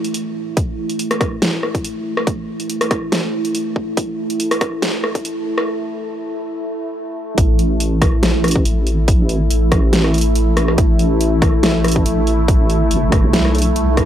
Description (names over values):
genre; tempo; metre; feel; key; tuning
deep dubstep; 141 BPM; 4/4; swing 54% on 16ths, half-time; unclear; A4 = 441 Hz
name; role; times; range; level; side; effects
deep dark ambient pad; sustained chords; 0.0-14.1 s; A3 to E4; -21 LUFS; right 1 dB; chorus, built-in reverb
dubstep drum kit; drums; 0.0-14.1 s; hi-hat, rim click, snare drum; -20 LUFS; equal; overdrive
electronic kick drum; drums; 0.6-14.1 s; none; -16 LUFS; equal; none
deep soft wobble bass; bass; 7.4-14.1 s; G1 to B1; -16 LUFS; equal; chorus, tube saturation
room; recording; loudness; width
little or no reverb; dry, gritty hardware recording, high-pass filter; -15 LUFS; side -10 dB against mid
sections
0.0-7.4 A section; 7.4-14.1 B section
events
build-up 0.0-7.4; filter sweep on ambient pad 0.0-7.4; filter sweep 0.0-7.4; break 5.7-7.4; drop 7.4-14.1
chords
0.0 A5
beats
0.14 | 0.57 0.99 1.42 1.85 | 2.27 2.70 3.12 3.55 | 3.97 4.40 4.83 5.25 | 5.68 6.10 6.53 6.95 | 7.38 7.80 8.23 8.65 | 9.08 9.51 9.93 10.36 | 10.78 11.21 11.63 12.06 | 12.48 12.91 13.34 13.76